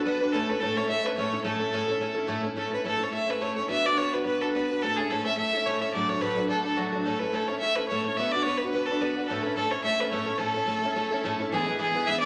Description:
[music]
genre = celtic folk, Celtic reel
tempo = 215 BPM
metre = 4/4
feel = swing 54% on 8ths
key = A major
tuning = A4 = 440 Hz
[part]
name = rich fiddle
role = melody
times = 0.0-12.3 s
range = F#4 to E5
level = -30 LUFS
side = equal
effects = none
[part]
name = wooden-headed alto flute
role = second line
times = 0.0-2.2 s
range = A4 to E5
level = -40 LUFS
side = equal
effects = none
[part]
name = picked twelve-string acoustic guitar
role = accompaniment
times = 0.0-12.3 s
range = D2 to B4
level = -31 LUFS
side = equal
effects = none
[sound]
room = wet large studio reverb, RT60 1.3 s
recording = none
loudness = -27 LUFS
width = mono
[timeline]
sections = 0.0-2.6 A section; 2.6-11.5 A section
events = none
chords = 0.3 A; 3.7 Bm; 4.8 A; 5.9 D; 7.1 A; 8.2 Bm; 9.3 A; 11.5 E

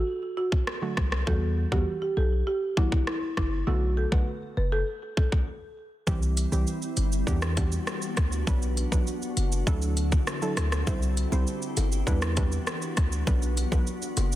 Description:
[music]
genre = dancehall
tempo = 100 BPM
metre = 4/4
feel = straight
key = E minor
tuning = A4 = 435 Hz
[part]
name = hard-hitting 808-style bass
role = bass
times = 0.0-14.4 s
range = F#1 to E2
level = -26 LUFS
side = equal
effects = none
[part]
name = folk marimba with medium mallets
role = melody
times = 0.4-5.3 s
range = E4 to B4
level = -31 LUFS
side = right 1 dB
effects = digital delay
[part]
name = island pop drum kit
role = drums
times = 0.5-14.4 s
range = hi-hat, kick drum, rim click, shaker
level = -27 LUFS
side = equal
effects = overdrive, vintage 12-bit sampler grit
[part]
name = soft round pluck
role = accompaniment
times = 0.8-13.9 s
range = D3 to C5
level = -33 LUFS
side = right 2 dB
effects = chorus
[part]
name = glassy FM pad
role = sustained chords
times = 6.3-14.4 s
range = D3 to A4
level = -34 LUFS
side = left 1 dB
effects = ensemble chorus, built-in reverb, sidechain pumping
[part]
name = bongos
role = percussion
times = 10.9-14.3 s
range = none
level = -40 LUFS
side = left 5 dB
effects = none
[sound]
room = little or no reverb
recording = dense, heavily limited modern master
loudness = -24 LUFS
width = side -14 dB against mid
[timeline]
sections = 0.0-6.1 A section; 6.1-14.4 B section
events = break 5.5-6.1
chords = 0.0 D; 1.3 Emadd9; 3.7 Bm7; 6.1 C; 7.3 Em7; 8.5 Bm; 9.7 Dadd9; 10.9 C; 12.1 Em7; 13.3 Bm

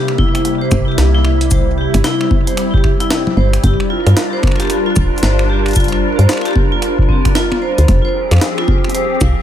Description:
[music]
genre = IDM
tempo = 113 BPM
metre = 4/4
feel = swing 62% on 16ths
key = unclear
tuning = A4 = 440 Hz
[part]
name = glassy FM pad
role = sustained chords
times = 0.0-9.4 s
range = C3 to Bb4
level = -19 LUFS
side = left 2 dB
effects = ensemble chorus, built-in reverb, sidechain pumping
[part]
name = jungle sampler-style drum kit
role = drums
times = 0.1-9.3 s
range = finger snaps, hi-hat, shaker, snare drum, toms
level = -21 LUFS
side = equal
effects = analog delay
[part]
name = vibraphone with hard mallets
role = arpeggios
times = 0.2-9.3 s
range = C4 to F5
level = -19 LUFS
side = right 2 dB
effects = tape echo
[part]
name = electronic kick drum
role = drums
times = 0.2-9.3 s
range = none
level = -15 LUFS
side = equal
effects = none
[part]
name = woody FM bass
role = bass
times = 0.7-9.3 s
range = D1 to G2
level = -12 LUFS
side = equal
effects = tube saturation
[sound]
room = light reverb, digital ambience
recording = echo-heavy mix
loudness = -11 LUFS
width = side -10 dB against mid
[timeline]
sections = 0.0-9.4 A section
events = none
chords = 0.0 C7; 3.6 Gm7; 7.9 Fmadd9

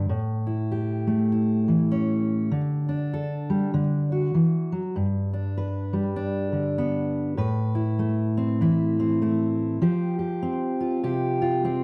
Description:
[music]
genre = folk, solo fingerstyle acoustic guitar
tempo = 99 BPM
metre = 4/4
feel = swing 61% on 8ths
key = unclear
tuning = A4 = 439 Hz
[part]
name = fingerpicked steel-string acoustic guitar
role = solo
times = 0.0-11.8 s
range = G2 to B4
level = -25 LUFS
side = equal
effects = slapback echo
[sound]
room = little or no reverb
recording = dry, close 1970s-style studio recording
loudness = -25 LUFS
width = mono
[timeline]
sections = 0.0-7.4 A section; 7.4-11.8 B section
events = none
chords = 0.1 A; 2.5 G5/D; 3.7 D; 4.9 G; 7.4 Amadd9; 9.8 Fsus2

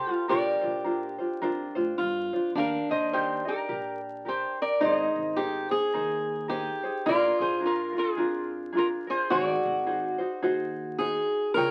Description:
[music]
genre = Hawaiian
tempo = 107 BPM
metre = 4/4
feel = swing 60% on 8ths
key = unclear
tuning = A4 = 440 Hz
[part]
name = lap resonator guitar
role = melody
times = 0.0-11.7 s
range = F4 to G5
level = -31 LUFS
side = equal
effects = none
[part]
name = fingerpicked swing-style acoustic guitar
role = second line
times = 0.0-11.7 s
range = D4 to Bb4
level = -32 LUFS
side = equal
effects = none
[part]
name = tenor ukulele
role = accompaniment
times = 0.0-11.7 s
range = D4 to Eb5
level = -34 LUFS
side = equal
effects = none
[part]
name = upright bass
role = bass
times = 0.3-11.7 s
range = Ab1 to A2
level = -46 LUFS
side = equal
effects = none
[sound]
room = wet studio ambience, RT60 0.5 s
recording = very old 78 rpm record, vinyl crackle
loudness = -28 LUFS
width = mono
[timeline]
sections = 0.0-2.5 A section; 2.5-11.7 B section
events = none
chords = 0.3 Bbadd9; 2.5 Eb; 4.8 Abadd9; 7.1 Bb7; 9.3 Ab7

